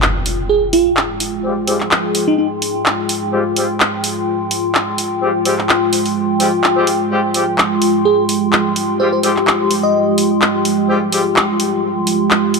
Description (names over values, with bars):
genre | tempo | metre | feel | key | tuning
bass house | 127 BPM | 4/4 | swing 54% on 16ths | F minor | A4 = 439 Hz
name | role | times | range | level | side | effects
sweeping resonant pad | sustained chords | 0.0-12.6 s | Ab3 to Ab4 | -19 LUFS | right 4 dB | chorus
garage drum kit | drums | 0.0-12.6 s | handclaps, hi-hat | -17 LUFS | equal | none
impact | sound effects | 0.0-1.4 s | none | -23 LUFS | equal | none
warbly tape-like pad | texture | 0.1-12.6 s | F4 to C6 | -19 LUFS | left 3 dB | chorus, built-in reverb
bell-like FM electric piano | melody | 0.5-2.5, 8.1-10.2 s | Eb4 to Eb5 | -17 LUFS | right 2 dB | chorus, phaser, tape echo
clear horn section | stabs | 1.4-11.2 s | G3 to G4 | -21 LUFS | left 3 dB | low-pass filter, tape echo
room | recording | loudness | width
moderate lush hall reverb, RT60 2.1 s | dark, warm production | -13 LUFS | side -3 dB against mid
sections
0.0-12.6 A section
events
impact 0.0-1.4; filter sweep on horn section 0.0-12.6; filter sweep on analog synth pad 0.0-12.6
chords
0.0 Fmadd9